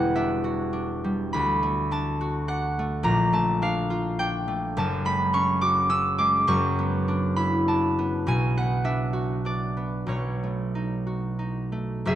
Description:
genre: classical, solo harp piece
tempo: 88-108 BPM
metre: 3/4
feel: rubato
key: unclear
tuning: A4 = 439 Hz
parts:
  - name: concert harp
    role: solo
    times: 0.0-12.2 s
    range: E1 to E6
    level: -23 LUFS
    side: equal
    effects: none
room: light reverb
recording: close, detailed microphones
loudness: -23 LUFS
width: side -12 dB against mid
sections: 0.0-12.0 A section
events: none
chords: 0.0 Em9; 1.3 D6; 3.1 Bbmaj7; 4.7 F#madd9; 6.5 D69/F#; 8.3 Bm6; 10.1 B9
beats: 0.15 0.73 | 1.34 1.93 2.50 | 3.06 3.62 4.18 | 4.75 5.32 5.90 | 6.49 7.08 7.67 | 8.26 8.85 9.45 | 10.10 10.76 11.40 | 12.04

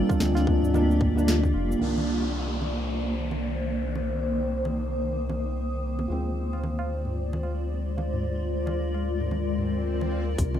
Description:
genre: organic downtempo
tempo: 112 BPM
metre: 4/4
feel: swing 60% on 16ths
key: C minor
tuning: A4 = 440 Hz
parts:
  - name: felt-muted upright piano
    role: accompaniment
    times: 0.0-10.4 s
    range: Eb3 to D4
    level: -35 LUFS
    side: right 2 dB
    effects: sidechain pumping, low-pass filter, ping-pong delay
  - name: granular cloud pad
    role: sustained chords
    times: 0.0-10.6 s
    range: Eb3 to Eb6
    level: -30 LUFS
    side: left 1 dB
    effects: built-in reverb, sidechain pumping
  - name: steel tongue drum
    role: arpeggios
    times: 0.0-1.8, 10.5-10.6 s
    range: Bb3 to D4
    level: -28 LUFS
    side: right 1 dB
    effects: ping-pong delay
  - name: round analog bass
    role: bass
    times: 0.0-10.6 s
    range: F1 to D2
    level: -28 LUFS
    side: left 1 dB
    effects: sidechain pumping
  - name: afro-pop drum kit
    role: drums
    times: 0.1-10.6 s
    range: congas, hi-hat, shaker, snare drum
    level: -33 LUFS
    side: right 1 dB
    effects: none
  - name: electronic kick drum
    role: drums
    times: 0.1-1.5, 10.4-10.5 s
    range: none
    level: -26 LUFS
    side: left 1 dB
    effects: none
  - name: tabla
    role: percussion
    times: 0.1-1.8, 6.5-10.4 s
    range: none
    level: -37 LUFS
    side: right 1 dB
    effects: none
  - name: downlifter and swell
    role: sound effects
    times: 1.8-6.1, 9.6-10.4 s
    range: none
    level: -38 LUFS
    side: right 1 dB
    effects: none
room: wet small room reverb, RT60 0.5 s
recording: rough home demo mix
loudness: -24 LUFS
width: side -10 dB against mid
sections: 0.0-1.8 A section; 1.8-10.4 B section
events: band accent 1.3; filter sweep on ambient pad 1.8-10.4; swell 9.6-10.4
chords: 0.0 Gm7; 1.8 Cm9; 6.1 Dm7b5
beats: 0.21 0.74 1.28 | 1.81 2.35 2.88 3.42 | 3.96 4.49 5.03 5.56 | 6.10 6.63 7.17 7.71 | 8.24 8.78 9.31 9.85 | 10.38

